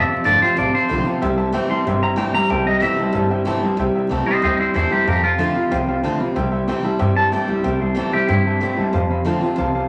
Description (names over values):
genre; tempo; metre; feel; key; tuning
rock; 187 BPM; 4/4; straight; C major; A4 = 437 Hz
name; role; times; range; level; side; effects
clean electric guitar; melody; 0.0-8.9 s; E4 to C6; -22 LUFS; equal; spring reverb
picked steel-string acoustic guitar; accompaniment; 0.0-9.9 s; F2 to F4; -28 LUFS; equal; none
warm upright piano; accompaniment; 0.0-9.8 s; C5 to C6; -28 LUFS; equal; none
electric guitar through a small old amp; riff; 0.0-9.9 s; F2 to A3; -24 LUFS; equal; harmonic tremolo
upright bass; bass; 0.0-9.9 s; G1 to G2; -27 LUFS; equal; none
room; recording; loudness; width
wet large studio reverb, RT60 0.9 s; vinyl crackle; -19 LUFS; mono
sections
0.0-3.8 A section; 3.8-9.9 B section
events
clean electric guitar solo 0.0-3.8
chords
0.0 F; 1.2 C; 5.1 F; 6.4 C; 8.9 F